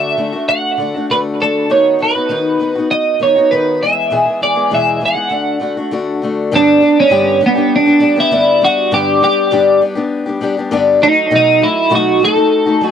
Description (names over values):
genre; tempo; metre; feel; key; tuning
rock; 100 BPM; 4/4; straight; unclear; A4 = 440 Hz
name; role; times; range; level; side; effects
twelve-string electric guitar; melody; 0.0-12.9 s; B3 to F#5; -12 LUFS; right 2 dB; analog chorus, cassette tape, analog delay
picked old ladder-braced acoustic guitar; accompaniment; 0.0-12.9 s; E2 to G#4; -15 LUFS; left 4 dB; cassette tape
room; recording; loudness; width
moderate booth ambience, RT60 0.2 s; home recording on cassette; -11 LUFS; side -8 dB against mid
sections
0.0-6.5 A section; 6.5-12.9 B section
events
none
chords
0.0 D; 1.7 B/D#; 3.8 E; 5.3 D; 6.5 G; 11.0 B7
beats
0.49 1.09 | 1.70 2.30 2.90 3.51 | 4.11 4.71 5.32 5.92 | 6.52 7.12 7.72 8.32 | 8.92 9.52 10.12 10.72 | 11.32 11.92 12.52